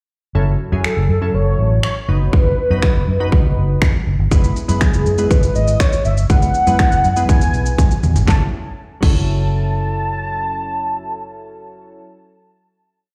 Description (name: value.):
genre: dance-pop.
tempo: 121 BPM.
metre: 4/4.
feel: straight.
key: F# dorian.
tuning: A4 = 442 Hz.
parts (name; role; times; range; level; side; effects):
glassy digital keys; accompaniment; 0.3-12.0 s; F#3 to B4; -28 LUFS; equal; chorus, sidechain pumping.
vintage muted fingered electric bass; bass; 0.3-12.0 s; F#1 to F#2; -20 LUFS; equal; sidechain pumping.
warm velvety synth lead; melody; 0.8-12.0 s; G#4 to A5; -23 LUFS; equal; chorus, phaser, digital delay.
pop drum kit; drums; 0.8-9.2 s; crash cymbal, finger snaps, kick drum, shaker, snare drum, toms; -18 LUFS; equal; none.
room: little or no reverb.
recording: played on a big sound system in a bare room, stone room reverb.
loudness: -16 LUFS.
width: mono.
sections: 0.3-8.3 verse; 8.3-12.2 final chord.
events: drum fill 7.8-8.3.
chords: 0.3 F#m7; 2.1 B/F#; 4.3 E/F#; 8.3 F#m7.